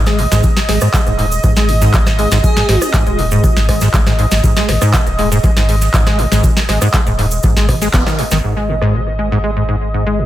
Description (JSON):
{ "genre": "acid house", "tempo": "120 BPM", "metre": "4/4", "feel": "straight", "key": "unclear", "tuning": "A4 = 445 Hz", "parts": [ { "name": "lush unison pad", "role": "sustained chords", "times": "0.0-10.3 s", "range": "Eb5", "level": "-22 LUFS", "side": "right 1 dB", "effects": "chorus, sidechain pumping" }, { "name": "acid bass, saw", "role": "riff", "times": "0.0-10.3 s", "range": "Ab2 to Cb4", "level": "-16 LUFS", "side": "equal", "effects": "analog chorus, sidechain pumping, analog delay" }, { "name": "warm sub bass", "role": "bass", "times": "0.0-10.3 s", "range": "Eb1 to Ab1", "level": "-17 LUFS", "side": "equal", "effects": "tube saturation, sidechain pumping" }, { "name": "booming analog drum machine", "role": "drums", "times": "0.1-8.9 s", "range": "handclaps, hi-hat, rim click, snare drum", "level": "-19 LUFS", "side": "equal", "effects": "low-pass filter on hats, low-pass filter on snare, low-pass filter on room, analog delay" }, { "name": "tube shaker", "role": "percussion", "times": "0.1-8.4 s", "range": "none", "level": "-27 LUFS", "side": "right 3 dB", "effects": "none" }, { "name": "electronic kick drum", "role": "drums", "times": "0.4-8.0 s", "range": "none", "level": "-14 LUFS", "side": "equal", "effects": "none" }, { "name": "airy dreamy lead", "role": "melody", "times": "2.4-2.8 s", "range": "Ab4", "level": "-21 LUFS", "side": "right 1 dB", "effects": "chorus, cassette tape, analog delay" } ], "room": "light reverb", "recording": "echo-heavy mix", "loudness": "-11 LUFS", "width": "side -13 dB against mid", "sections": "0.0-8.4 A section; 8.4-10.3 B section", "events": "band accent 7.9; filter sweep on drum 8.4-10.3", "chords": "0.0 Ab5" }